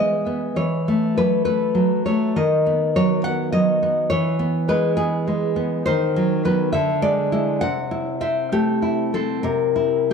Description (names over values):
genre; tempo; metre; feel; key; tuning
romantic piece for solo classical guitar; 67 BPM (dotted quarters); 6/8; rubato; E major; A4 = 439 Hz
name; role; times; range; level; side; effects
nylon-string guitar; solo; 0.0-10.1 s; C3 to F#5; -18 LUFS; equal; tape echo
room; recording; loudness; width
moderate recital hall reverb, RT60 1.5 s; dark, warm production; -18 LUFS; side -6 dB against mid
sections
0.0-10.1 A section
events
none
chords
0.0 E (rootless); 0.6 F#m7/E; 2.4 B/D#; 4.1 E; 5.9 B/D#; 6.7 E7/D; 7.6 Am/C; 9.4 C7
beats
| 0.57 1.47 | 2.37 3.25 | 4.12 4.99 | 5.87 6.73 | 7.62 8.53 | 9.44